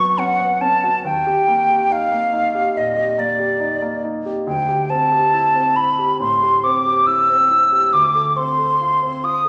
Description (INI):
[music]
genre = classical, impressionist duo for flute and grand piano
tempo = 69 BPM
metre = 4/4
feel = rubato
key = Eb lydian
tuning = A4 = 440 Hz
[part]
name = mellow hollow silver concert flute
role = melody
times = 0.0-9.5 s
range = D5 to E6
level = -18 LUFS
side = equal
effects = none
[part]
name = warm grand piano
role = accompaniment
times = 0.0-9.5 s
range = D2 to A4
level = -27 LUFS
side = equal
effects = none
[sound]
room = wet recital hall reverb, RT60 1.4 s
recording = none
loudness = -17 LUFS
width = mono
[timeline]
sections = 0.0-9.5 A section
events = none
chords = 0.0 Bsus2; 1.0 Ebmaj7; 4.5 D9sus4; 7.9 F/D